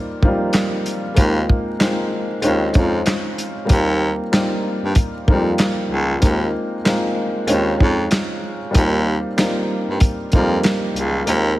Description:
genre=hip hop, boom-bap hip-hop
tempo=95 BPM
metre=4/4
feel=swing 63% on 16ths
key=Eb mixolydian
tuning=A4 = 439 Hz
part: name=dark upright piano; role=accompaniment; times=0.0-11.6 s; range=F3 to F4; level=-20 LUFS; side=equal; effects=cassette tape
part: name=warm soul drum kit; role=drums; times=0.2-11.5 s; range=handclaps, hi-hat, kick drum, snare drum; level=-18 LUFS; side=equal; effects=none
part: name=breathy baritone saxophone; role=bass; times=1.2-11.5 s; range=Db2 to G2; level=-20 LUFS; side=equal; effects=none
room=moderate lush hall reverb, RT60 2.6 s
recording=dreamy mix soaked in reverb, vinyl crackle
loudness=-16 LUFS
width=side -16 dB against mid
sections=0.0-11.6 A section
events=break 0.0-1.2; kick muted 11.3-11.6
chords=0.0 Eb6; 1.2 Ab6/Eb; 2.4 Dbmaj7/Eb; 3.7 Eb6; 6.2 Ab6/Eb; 7.5 Dbmaj7/Eb; 8.8 Eb6

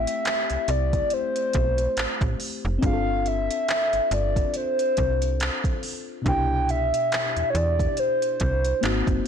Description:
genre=contemporary R&B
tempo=70 BPM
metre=4/4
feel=swing 58% on 16ths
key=C major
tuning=A4 = 440 Hz
part: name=hollow clarinet-like synth lead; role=melody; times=0.0-9.3 s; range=C5 to G5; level=-25 LUFS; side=equal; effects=chorus, phaser
part: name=mellow FM electric piano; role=accompaniment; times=0.0-9.3 s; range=B2 to A4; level=-31 LUFS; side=left 5 dB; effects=chorus
part: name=slap-like FM bass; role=bass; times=0.0-9.2 s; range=F1 to E2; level=-26 LUFS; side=right 1 dB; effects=none
part: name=smooth R&B drum kit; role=drums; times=0.1-9.3 s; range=handclaps, hi-hat, kick drum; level=-28 LUFS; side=right 1 dB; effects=vintage 12-bit sampler grit
room=little or no reverb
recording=blown-out, overdriven recording, overdrive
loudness=-21 LUFS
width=side -8 dB against mid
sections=0.0-9.3 A section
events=none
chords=0.0 Am7; 2.8 G9sus4; 6.3 Cmaj7

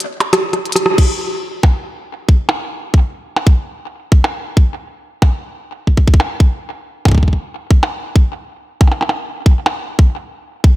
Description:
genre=IDM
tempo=92 BPM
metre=4/4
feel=swing 62% on 16ths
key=none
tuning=none
part: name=glitchy drum kit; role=drums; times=0.0-9.8 s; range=crash cymbal, hi-hat, percussion blips, rim click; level=-18 LUFS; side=right 1 dB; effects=studio reverb, analog delay
part: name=electronic kick drum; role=drums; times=1.0-10.7 s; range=none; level=-9 LUFS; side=equal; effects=studio reverb
room=light reverb, digital ambience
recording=echo-heavy mix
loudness=-13 LUFS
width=side -16 dB against mid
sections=1.0-10.8 A section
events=break 0.0-1.0; drum fill 0.5-1.0; band accent 0.8-1.1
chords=none

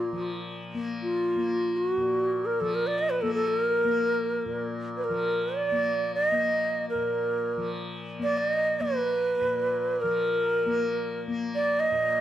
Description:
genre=indian classical, Hindustani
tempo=free time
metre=none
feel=none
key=unclear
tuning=A4 = 440 Hz
part: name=breathy hollow bansuri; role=melody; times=0.0-12.2 s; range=F4 to Eb5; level=-25 LUFS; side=right 1 dB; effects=none
part: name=tanpura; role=drone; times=0.0-12.2 s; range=Bb2 to Bb3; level=-33 LUFS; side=left 3 dB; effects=none
room=light reverb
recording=close, detailed microphones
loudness=-25 LUFS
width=side -11 dB against mid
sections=0.0-12.2 A section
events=none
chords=none

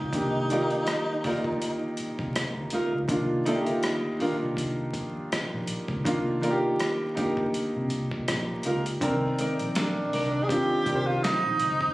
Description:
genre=R&B, neo-soul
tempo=81 BPM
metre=4/4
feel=swing 57% on 16ths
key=C minor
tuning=A4 = 442 Hz
part: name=breathy tenor saxophone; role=melody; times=0.0-2.0, 9.8-11.9 s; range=D4 to Ab4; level=-27 LUFS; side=right 1 dB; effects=slapback echo
part: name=warm concert grand piano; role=accompaniment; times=0.0-11.9 s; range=D3 to D5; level=-28 LUFS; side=equal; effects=none
part: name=vintage muted fingered electric bass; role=bass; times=0.0-11.9 s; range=Bb1 to C3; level=-34 LUFS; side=equal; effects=none
part: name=dusty soul sampler-style drum kit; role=drums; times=0.1-11.9 s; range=hi-hat, kick drum, rim click, snare drum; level=-32 LUFS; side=equal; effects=overdrive
part: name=flamenco guitar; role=second line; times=0.5-10.3 s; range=Eb4 to D5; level=-32 LUFS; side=right 1 dB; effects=none
room=light reverb, small room ambience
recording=recorded on a phone in the room, club reverb, vinyl crackle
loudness=-25 LUFS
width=side -18 dB against mid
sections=0.0-9.0 A section; 9.0-11.9 B section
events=none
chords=0.0 Cm11; 9.0 Cm9

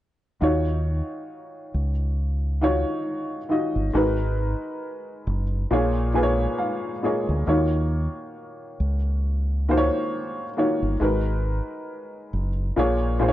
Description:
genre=lo-fi hip hop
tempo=68 BPM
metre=4/4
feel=swing 57% on 16ths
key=Eb minor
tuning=A4 = 442 Hz
part: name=dark upright piano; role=accompaniment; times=0.4-13.3 s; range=Bb2 to Ab5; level=-24 LUFS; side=equal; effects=low-pass filter
part: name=deep dub fingered electric bass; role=bass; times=0.4-13.3 s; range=Gb1 to Eb2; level=-23 LUFS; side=equal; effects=none
room=light reverb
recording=dark, warm production, nothing above 10.6 kHz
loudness=-22 LUFS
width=side -14 dB against mid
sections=0.4-13.3 A section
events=upright piano fill 5.7-7.5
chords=0.4 Ebm9; 3.9 Abm9; 5.7 Bbm7; 7.5 Ebm9; 11.0 Abm9; 12.8 Bbm7

